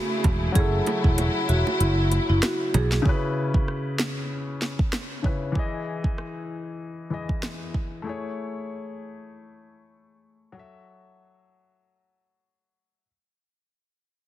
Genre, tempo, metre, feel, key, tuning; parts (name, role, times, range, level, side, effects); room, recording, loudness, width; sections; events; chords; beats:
dancehall; 96 BPM; 4/4; swing 56% on 16ths; A4 = 442 Hz
warm grand piano; accompaniment; 0.0-13.1 s; C#3 to E5; -31 LUFS; left 3 dB
warm studio string section; sustained chords; 0.0-3.0 s; C#3 to G#4; -30 LUFS; left 2 dB; sidechain pumping
picked electric bass; bass; 0.2-3.0 s; E1 to B1; -22 LUFS; right 1 dB
afro-pop drum kit; drums; 0.2-7.9 s; hi-hat, kick drum, rim click, snare drum; -25 LUFS; right 1 dB
bongos; percussion; 0.2-2.9 s; -31 LUFS; right 4 dB
marimba with medium mallets; melody; 0.6-2.9 s; E4 to G#4; -28 LUFS; right 1 dB; tape echo
light reverb, small room ambience; heavily compressed radio sound, multiband compression; -23 LUFS; side -13 dB against mid
0.0-3.1 A section; 3.1-13.1 B section
kick muted 1.8-3.1; fade-out 3.1-13.1
0.0 Amaj7; 0.6 F#m7; 3.1 C#m7; 5.6 Emaj7; 8.1 Amaj7; 10.6 F#m7
| 0.56 1.18 1.80 2.43 | 3.06 3.68 4.30 4.93 | 5.55 6.18 6.80 7.43 | 8.05 8.68 9.30 9.93 | 10.55 11.18 11.80 12.43